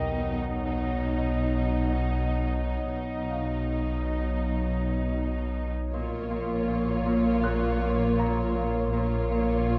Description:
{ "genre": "cinematic, suspense film score", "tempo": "80 BPM", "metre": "4/4", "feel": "straight", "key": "unclear", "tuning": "A4 = 440 Hz", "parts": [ { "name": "muted studio violin section", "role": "melody", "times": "0.0-9.8 s", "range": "D#4 to Db5", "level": "-38 LUFS", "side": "equal", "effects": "none" }, { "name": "glass harmonica", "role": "sustained chords", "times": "0.0-9.8 s", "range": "F4 to F#5", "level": "-37 LUFS", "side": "equal", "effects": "none" }, { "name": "muted studio cello section", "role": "bass", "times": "0.0-9.8 s", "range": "Bb2 to B2", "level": "-35 LUFS", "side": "equal", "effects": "none" }, { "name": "muted studio double bass section", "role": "bass", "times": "0.0-9.8 s", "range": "Bb1 to B1", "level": "-35 LUFS", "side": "equal", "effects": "none" }, { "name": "deep rumbling drone", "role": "drone", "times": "0.0-9.8 s", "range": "Bb1 to B1", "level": "-34 LUFS", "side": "equal", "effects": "built-in reverb" }, { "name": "warm concert grand piano", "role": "texture", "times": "0.0-9.8 s", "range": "Bb4 to Gb6", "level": "-43 LUFS", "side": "equal", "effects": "none" }, { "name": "muted studio violin section", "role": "second line", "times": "5.9-9.8 s", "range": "F4", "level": "-38 LUFS", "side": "equal", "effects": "none" }, { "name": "muted studio viola section", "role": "accompaniment", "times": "5.9-9.8 s", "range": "Bb3", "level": "-36 LUFS", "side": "equal", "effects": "none" }, { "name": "Celtic harp", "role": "riff", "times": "5.9-9.8 s", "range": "Bb2", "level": "-33 LUFS", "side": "equal", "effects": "none" } ], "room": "moderate recital hall reverb, RT60 1.6 s", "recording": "worn, warbling old tape, cassette tape, warbly pitch drift", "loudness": "-28 LUFS", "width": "mono", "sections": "0.0-5.9 A section; 5.9-9.8 B section", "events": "none", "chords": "0.0 Badd9; 5.9 Bbm" }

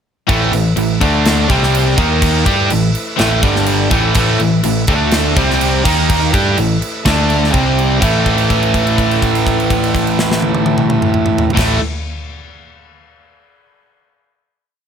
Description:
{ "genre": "hard rock", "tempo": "124 BPM", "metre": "4/4", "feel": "straight", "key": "A minor", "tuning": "A4 = 442 Hz", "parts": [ { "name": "bright tonewheel organ", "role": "sustained chords", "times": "0.3-11.7 s", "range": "G3 to F5", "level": "-26 LUFS", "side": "left 2 dB", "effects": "none" }, { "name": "cranked stack guitar", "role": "riff", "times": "0.3-11.8 s", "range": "G2 to G4", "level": "-18 LUFS", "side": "left 12 dB", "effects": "overdrive" }, { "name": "distorted electric guitar", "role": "riff", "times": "0.3-11.8 s", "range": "G2 to G4", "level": "-16 LUFS", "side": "right 9 dB", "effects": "overdrive" }, { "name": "picked electric bass", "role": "bass", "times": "0.3-11.8 s", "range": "G1 to G2", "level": "-18 LUFS", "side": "left 1 dB", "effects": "none" }, { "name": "tight metal drum kit", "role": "drums", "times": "0.3-11.7 s", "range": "crash cymbal, kick drum, snare drum, toms", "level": "-18 LUFS", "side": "equal", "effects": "none" } ], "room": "light reverb, small room ambience", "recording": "none", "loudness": "-11 LUFS", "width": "side -8 dB against mid", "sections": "0.3-8.0 riff; 8.0-11.9 final chord", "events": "held note 8.0-11.6", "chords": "0.3 A5; 1.0 D5; 1.5 C5; 2.0 D#5; 2.5 A5; 3.4 G5; 3.9 A5; 4.9 D5; 5.4 C5; 5.9 D#5; 6.3 A5; 7.1 D5; 7.5 C5; 8.0 A5" }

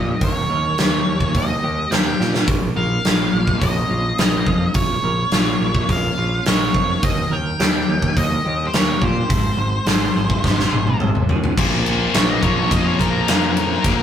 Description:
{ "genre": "quiet-loud alternative rock", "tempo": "106 BPM", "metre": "4/4", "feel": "straight", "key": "Bb dorian", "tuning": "A4 = 440 Hz", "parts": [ { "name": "octave-fuzz lead guitar", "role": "melody", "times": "0.0-14.0 s", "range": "Bb4 to G5", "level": "-23 LUFS", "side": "equal", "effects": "distortion" }, { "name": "twelve-string electric guitar", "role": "arpeggios", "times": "0.0-14.0 s", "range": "Bb2 to C5", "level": "-27 LUFS", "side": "right 4 dB", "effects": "tremolo" }, { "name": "overdriven picked electric bass", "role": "bass", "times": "0.0-14.0 s", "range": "Ab1 to Bb2", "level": "-23 LUFS", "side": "equal", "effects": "none" }, { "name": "huge arena drum kit", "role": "drums", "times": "0.2-14.0 s", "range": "crash cymbal, hi-hat, kick drum, ride cymbal, snare drum, toms", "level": "-19 LUFS", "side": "equal", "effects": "none" }, { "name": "distorted electric guitar", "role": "riff", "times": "11.6-14.0 s", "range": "Bb2 to Bb3", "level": "-20 LUFS", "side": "left 5 dB", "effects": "overdrive" } ], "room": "moderate studio reverb, RT60 0.5 s", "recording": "rough rehearsal-room recording", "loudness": "-16 LUFS", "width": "side -9 dB against mid", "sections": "0.0-11.6 A section; 11.6-14.0 B section", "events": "drum fill 2.2, 10.4-11.6; lead electric guitar solo 11.6-14.0", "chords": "0.0 Eb; 2.5 Bbm; 7.0 Eb; 9.3 Ab; 11.6 Bbm" }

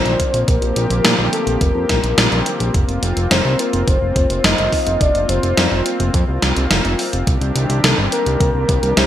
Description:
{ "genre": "synthwave", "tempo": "106 BPM", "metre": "4/4", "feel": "straight", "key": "unclear", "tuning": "A4 = 445 Hz", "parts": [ { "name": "soft octave-layered synth lead", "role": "melody", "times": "0.0-9.1 s", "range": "A4 to Eb5", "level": "-21 LUFS", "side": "left 1 dB", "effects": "chorus, tremolo, digital delay" }, { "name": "warm analog pad", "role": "sustained chords", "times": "0.0-9.1 s", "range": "D3 to G4", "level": "-23 LUFS", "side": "equal", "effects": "chorus, sidechain pumping" }, { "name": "fat analog bass", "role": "bass", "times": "0.1-9.1 s", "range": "F1 to Bb2", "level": "-19 LUFS", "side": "equal", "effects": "none" }, { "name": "gated 80s digital drum machine", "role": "drums", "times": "0.1-9.1 s", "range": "hi-hat, snare drum", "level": "-18 LUFS", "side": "equal", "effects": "gated reverb, gated reverb snare" }, { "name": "electronic kick drum", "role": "drums", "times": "0.2-8.8 s", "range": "none", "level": "-18 LUFS", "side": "equal", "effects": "none" } ], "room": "moderate lush hall reverb, RT60 2.4 s", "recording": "bright 1980s-style digital production", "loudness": "-14 LUFS", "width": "side -11 dB against mid", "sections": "0.0-9.1 A section", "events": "none", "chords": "0.0 Bbadd9; 2.7 Fsus4; 7.3 Cmadd9" }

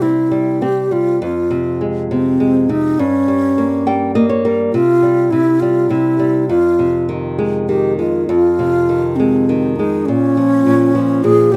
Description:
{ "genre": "children's music, lullaby", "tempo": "102 BPM", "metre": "3/4", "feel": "rubato", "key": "F minor", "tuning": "A4 = 437 Hz", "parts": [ { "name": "mellow hollow alto flute", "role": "melody", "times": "0.0-11.6 s", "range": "C4 to Ab4", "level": "-16 LUFS", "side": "equal", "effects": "none" }, { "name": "nylon-string guitar", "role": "accompaniment", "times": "0.0-11.6 s", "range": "F2 to G5", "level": "-20 LUFS", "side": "equal", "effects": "none" } ], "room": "wet studio ambience, RT60 0.5 s", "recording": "rough home demo mix", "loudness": "-15 LUFS", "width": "mono", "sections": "0.0-8.3 A section; 8.3-11.6 A section", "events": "nylon-string guitar fill 3.6-4.7", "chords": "0.0 C; 1.2 Fm; 3.0 Gdim; 4.7 Csus4; 6.5 Fm7; 10.1 Bbm" }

